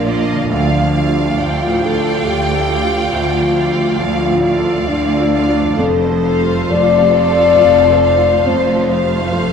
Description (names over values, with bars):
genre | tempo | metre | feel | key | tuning
cinematic, emotional film score for orchestra | 68 BPM | 3/4 | rubato | unclear | A4 = 440 Hz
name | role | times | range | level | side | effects
rich studio violin section | melody | 0.0-9.5 s | A4 to G5 | -25 LUFS | equal | none
rich studio violin section | second line | 0.0-9.5 s | C5 to F5 | -23 LUFS | right 1 dB | none
warm concert grand piano | accompaniment | 0.0-9.5 s | Bb1 to Bb4 | -21 LUFS | right 2 dB | none
warm studio viola section | accompaniment | 0.0-9.5 s | A3 to F4 | -23 LUFS | right 5 dB | none
mellow French horn section | sustained chords | 0.0-9.5 s | D4 to D5 | -15 LUFS | left 5 dB | none
rich studio cello section | bass | 0.0-9.5 s | D2 to Bb2 | -23 LUFS | right 4 dB | none
warm studio double bass section | bass | 0.0-9.5 s | F1 to D2 | -22 LUFS | right 4 dB | none
concert harp | arpeggios | 0.3-9.5 s | F2 to A4 | -26 LUFS | left 3 dB | none
room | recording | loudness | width
wet scoring stage reverb, RT60 1.8 s | minimal, uncompressed stereo recording | -12 LUFS | side -6 dB against mid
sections
0.0-9.5 A section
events
none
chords
0.5 Dm; 5.8 F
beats
| 0.50 1.38 2.26 | 3.13 3.99 4.86 | 5.78 6.71 7.59 | 8.47 9.33